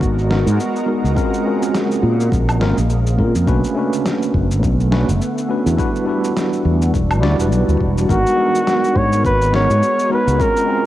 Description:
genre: sunset chillout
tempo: 104 BPM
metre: 4/4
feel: swing 57% on 16ths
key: unclear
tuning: A4 = 439 Hz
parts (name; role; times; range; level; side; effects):
- bright tine electric piano; accompaniment; 0.0-10.9 s; G3 to D5; -20 LUFS; equal; medium stereo tremolo, auto-pan, vintage 12-bit sampler grit, low-pass filter, cassette tape, tape echo
- shimmering ambient pad; sustained chords; 0.0-10.9 s; C#3 to A#4; -23 LUFS; equal; chorus, built-in reverb, cassette tape
- fretless electric bass; bass; 0.0-10.4 s; E1 to A#2; -16 LUFS; equal; analog chorus
- electronic kick drum; drums; 0.0-10.5 s; none; -21 LUFS; equal; cassette tape
- electronic shaker, snare drum and woodblock; drums; 0.0-10.7 s; none; -25 LUFS; equal; overdrive, cassette tape
- warm flugelhorn; melody; 8.1-10.9 s; F#4 to C#5; -16 LUFS; equal; cassette tape, tape echo
room: light reverb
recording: home recording on cassette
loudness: -14 LUFS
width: side -14 dB against mid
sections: 0.0-10.9 A section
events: filter sweep on tine electric piano 0.0-10.9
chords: 0.0 G#m9; 1.2 A#m9; 3.5 Bm9; 5.8 Em9; 8.1 G#m9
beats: 0.02 0.59 | 1.17 1.75 2.33 2.90 | 3.48 4.06 4.63 5.21 | 5.79 6.36 6.94 7.52 | 8.09 8.67 9.25 9.82 | 10.40

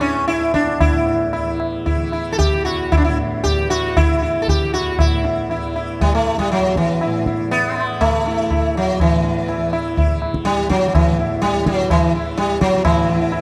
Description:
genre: indian classical, Hindustani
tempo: 112-128 BPM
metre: 4/4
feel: straight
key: unclear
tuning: A4 = 440 Hz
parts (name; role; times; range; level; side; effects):
- sitar; melody; 0.0-13.4 s; E3 to A4; -20 LUFS; equal; tape echo
- tanpura; drone; 0.0-13.4 s; E2 to E3; -29 LUFS; equal; none
- tabla; percussion; 0.0-13.4 s; none; -23 LUFS; equal; none
room: moderate concert hall reverb, RT60 1.9 s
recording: dark, warm production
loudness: -18 LUFS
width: mono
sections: 0.0-5.0 A section; 5.0-12.8 B section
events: speeding up 0.0-13.4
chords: none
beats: 0.28 | 0.81 1.34 1.87 2.39 | 2.92 3.44 3.96 4.47 | 4.98 5.49 6.00 6.51 | 7.01 7.51 8.01 8.50 | 9.00 9.49 9.97 10.46 | 10.94 11.42 11.90 12.38 | 12.85 13.32

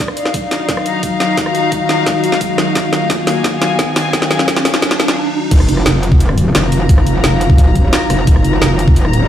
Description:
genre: dark technical drum and bass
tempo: 174 BPM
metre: 4/4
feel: straight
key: Eb minor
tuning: A4 = 440 Hz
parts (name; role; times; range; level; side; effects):
- deep dark ambient pad; sustained chords; 0.0-9.3 s; Eb4 to Bb5; -19 LUFS; left 1 dB; chorus, built-in reverb, sidechain pumping
- drum and bass drum kit; drums; 0.0-9.2 s; crash cymbal, hi-hat, rim click, snare drum; -17 LUFS; equal; overdrive, small room ambience
- electronic kick drum; drums; 0.0-8.9 s; none; -12 LUFS; equal; overdrive, high-pass filter on kick, small room ambience
- riser; sound effects; 1.8-5.5 s; none; -22 LUFS; right 1 dB; none
- dark chamber string section; texture; 0.0-9.3 s; Eb4 to Bb5; -19 LUFS; left 3 dB; sidechain pumping
- metallic wobble bass; bass; 5.5-9.3 s; Eb1 to F1; -14 LUFS; equal; chorus, tube saturation, sidechain pumping
room: light reverb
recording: played on a big sound system in a bare room, stone room reverb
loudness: -11 LUFS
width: side -10 dB against mid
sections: 0.0-5.5 A section; 5.5-9.3 B section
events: build-up 0.0-5.5; drum fill 0.0-5.2; filter sweep on ambient pad 0.0-5.5; riser 1.8-5.5; stop 5.2-5.5; drop 5.5-9.3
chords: 0.0 Ebmadd9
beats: | 0.00 0.34 0.69 1.03 | 1.38 1.72 2.06 2.41 | 2.75 3.10 3.44 3.79 | 4.13 4.48 4.82 5.17 | 5.51 5.86 6.20 6.55 | 6.89 7.24 7.58 7.93 | 8.27 8.62 8.96

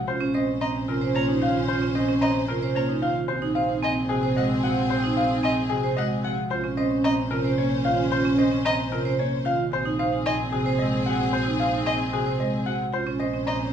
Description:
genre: classical, minimalist pattern music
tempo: 112 BPM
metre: 3/4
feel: straight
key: Bb minor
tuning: A4 = 439 Hz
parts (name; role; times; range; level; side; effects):
- bright concert grand piano; melody; 0.1-13.6 s; Ab4 to Bb5; -28 LUFS; left 3 dB; none
- mellow alto flute; second line; 0.1-13.7 s; C4 to Db4; -29 LUFS; equal; none
- rich studio string section; sustained chords; 0.1-13.7 s; C4 to C5; -31 LUFS; equal; none
- vibraphone with medium hard mallets; arpeggios; 0.1-13.6 s; C4 to C5; -27 LUFS; right 4 dB; none
- bright double bass; bass; 0.1-13.7 s; Bb1; -32 LUFS; right 2 dB; none
- marimba with medium mallets; accompaniment; 0.3-13.4 s; C3 to C4; -30 LUFS; equal; none
- rich violin; arpeggios; 0.6-13.6 s; Eb5 to Bb5; -30 LUFS; left 2 dB; none
room: wet large studio reverb, RT60 1.3 s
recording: small room ambience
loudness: -22 LUFS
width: side -8 dB against mid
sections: 0.0-13.7 A section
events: none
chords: 0.1 Bbmadd9; 3.3 Ab7/Bb; 6.5 Bbmadd9; 9.7 Ab7/Bb; 12.9 Bbmadd9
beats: | 0.08 0.61 1.15 | 1.69 2.22 2.76 | 3.29 3.83 4.36 | 4.90 5.44 5.97 | 6.51 7.04 7.58 | 8.11 8.65 9.19 | 9.72 10.26 10.79 | 11.33 11.86 12.40 | 12.94 13.47

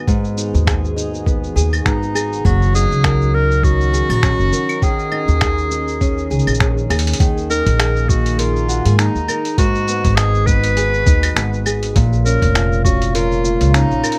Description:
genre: folktronica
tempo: 101 BPM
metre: 4/4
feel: swing 56% on 16ths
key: G# dorian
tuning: A4 = 436 Hz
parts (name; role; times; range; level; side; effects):
- warbly tape-like pad; sustained chords; 0.0-14.2 s; C#3 to C#5; -30 LUFS; equal; chorus, built-in reverb, plate reverb
- nylon-string guitar; arpeggios; 0.0-14.2 s; G#2 to A#4; -25 LUFS; equal; plate reverb
- electronic kick drum; drums; 0.1-13.0 s; none; -20 LUFS; equal; overdrive
- lo-fi sampler-style drum kit; drums; 0.1-14.2 s; claves, finger snaps, hi-hat, shaker; -25 LUFS; equal; overdrive
- upright bass; bass; 0.5-14.0 s; E#1 to G#2; -20 LUFS; equal; none
- breathy clarinet; melody; 1.9-14.2 s; D#4 to B4; -23 LUFS; equal; digital delay, plate reverb
room: light reverb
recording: none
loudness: -16 LUFS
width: mono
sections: 0.0-7.2 A section; 7.2-14.2 B section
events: drum fill 6.9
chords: 0.0 G#m7; 2.5 F#6; 4.8 D#7sus4; 9.6 G#m7; 12.0 A#m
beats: | 0.08 0.67 1.26 1.86 | 2.45 3.05 3.64 4.24 | 4.83 5.42 6.02 6.61 | 7.21 7.80 8.39 8.99 | 9.58 10.18 10.77 11.36 | 11.96 12.55 13.14 13.74

